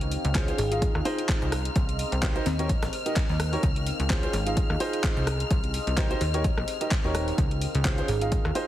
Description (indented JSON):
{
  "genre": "piano house",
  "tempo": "128 BPM",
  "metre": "4/4",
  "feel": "swing 56% on 16ths",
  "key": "Ab major",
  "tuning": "A4 = 440 Hz",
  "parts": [
    { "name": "warm studio violin section", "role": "sustained chords", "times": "0.0-8.7 s", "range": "F6", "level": "-38 LUFS", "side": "left 3 dB", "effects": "sidechain pumping" },
    { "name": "plucky analog bass", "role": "bass", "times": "0.0-8.5 s", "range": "Eb1 to Eb2", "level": "-28 LUFS", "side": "equal", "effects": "tube saturation, sidechain pumping" },
    { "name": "garage drum kit", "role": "drums", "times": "0.0-8.7 s", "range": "handclaps, hi-hat, rim click", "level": "-34 LUFS", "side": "left 1 dB", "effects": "studio reverb" },
    { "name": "deep dark ambient pad", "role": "texture", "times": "0.0-8.7 s", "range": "C4 to F5", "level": "-35 LUFS", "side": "left 1 dB", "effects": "chorus, built-in reverb, sidechain pumping" },
    { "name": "breakbeat sampler-style drum kit", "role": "drums", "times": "0.1-8.7 s", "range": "hi-hat, snare drum", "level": "-44 LUFS", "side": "equal", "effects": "none" },
    { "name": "electronic kick drum", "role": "drums", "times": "0.3-8.4 s", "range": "none", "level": "-27 LUFS", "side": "equal", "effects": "studio reverb" },
    { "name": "warm upright piano", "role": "riff", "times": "0.4-8.7 s", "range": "Db4 to F5", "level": "-32 LUFS", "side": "right 1 dB", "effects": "sidechain pumping, tape echo" },
    { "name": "bell-like FM electric piano", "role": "melody", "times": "0.6-2.7, 8.1-8.5 s", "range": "C4 to Ab4", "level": "-33 LUFS", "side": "equal", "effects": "chorus, phaser, tape echo" }
  ],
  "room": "light reverb",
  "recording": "heavily compressed radio sound, multiband compression",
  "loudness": "-24 LUFS",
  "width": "side -13 dB against mid",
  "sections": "0.0-8.7 A section",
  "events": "none",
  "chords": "0.0 Dbmaj7; 0.6 Ab6; 1.5 Cm7; 2.5 Eb7; 3.6 Dbmaj7; 4.3 Ab6; 5.3 Cm7; 6.2 Eb7; 7.4 Dbmaj7; 8.1 Ab6",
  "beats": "0.35 0.82 1.29 | 1.76 2.23 2.69 3.16 | 3.63 4.10 4.57 5.04 | 5.51 5.97 6.44 6.91 | 7.38 7.85 8.32"
}